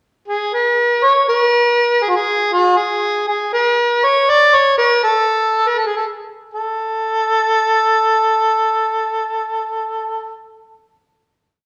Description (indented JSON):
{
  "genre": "persian",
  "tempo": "80 BPM (dotted quarters)",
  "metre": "6/8",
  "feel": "straight",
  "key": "A dastgah chahargah",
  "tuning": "A4 = 440 Hz",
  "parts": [
    { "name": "mellow harmonica", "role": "solo", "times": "0.3-10.3 s", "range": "F4+42c to D5", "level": "-16 LUFS", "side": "equal", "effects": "none" }
  ],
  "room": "wet large studio reverb, RT60 1.4 s",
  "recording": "band playing live in one room",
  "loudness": "-16 LUFS",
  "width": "mono",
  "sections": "0.0-0.5 pickup bar; 0.5-6.5 A section; 6.5-9.6 final note",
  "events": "none",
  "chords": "none",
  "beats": "| 0.52 1.27 | 2.02 2.78 | 3.53 4.29 | 5.04 5.79 | 6.54 7.30 | 8.05 8.80"
}